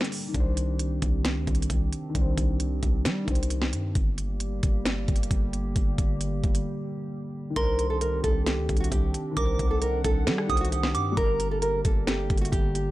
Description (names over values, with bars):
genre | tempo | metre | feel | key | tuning
hip hop, trap | 133 BPM | 4/4 | half-time | unclear | A4 = 438 Hz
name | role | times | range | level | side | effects
dark concert grand piano | accompaniment | 0.0-4.0, 7.5-12.9 s | Eb3 to C5 | -35 LUFS | left 4 dB | none
dark analog pad | sustained chords | 0.0-12.9 s | D3 to F#5 | -34 LUFS | right 1 dB | wide subtle chorus
trap drum kit | drums | 0.0-12.9 s | hi-hat, kick drum, rim click, snare drum | -26 LUFS | equal | vintage 12-bit sampler grit
hard-hitting 808-style bass | bass | 0.3-12.9 s | G1 to G3 | -29 LUFS | equal | none
nylon-string guitar | melody | 7.6-12.9 s | F#4 to Bb4 | -29 LUFS | right 1 dB | digital delay
soft synth bell | second line | 7.6-11.6 s | Bb5 to Eb6 | -32 LUFS | right 6 dB | chorus, phaser, digital delay
room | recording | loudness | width
little or no reverb | none | -24 LUFS | side -16 dB against mid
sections
0.0-7.6 A section; 7.6-12.9 B section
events
break 0.0-0.3, 6.7-7.6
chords
0.3 Cmadd9; 4.0 Gm; 7.6 Cmadd9; 11.2 Gm